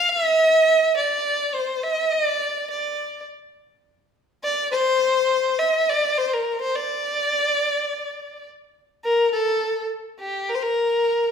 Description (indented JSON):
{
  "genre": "arabic",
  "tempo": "free time",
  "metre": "none",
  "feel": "none",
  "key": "D maqam bayati",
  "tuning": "A4 = 440 Hz",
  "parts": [
    { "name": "warm violin", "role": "solo", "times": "0.0-11.3 s", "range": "G4 to F5", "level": "-19 LUFS", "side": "equal", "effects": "none" }
  ],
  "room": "wet large studio reverb, RT60 1.3 s",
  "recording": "band playing live in one room",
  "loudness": "-19 LUFS",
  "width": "side -7 dB against mid",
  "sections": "0.0-9.0 A section; 9.0-11.3 B section",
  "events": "none",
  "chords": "none"
}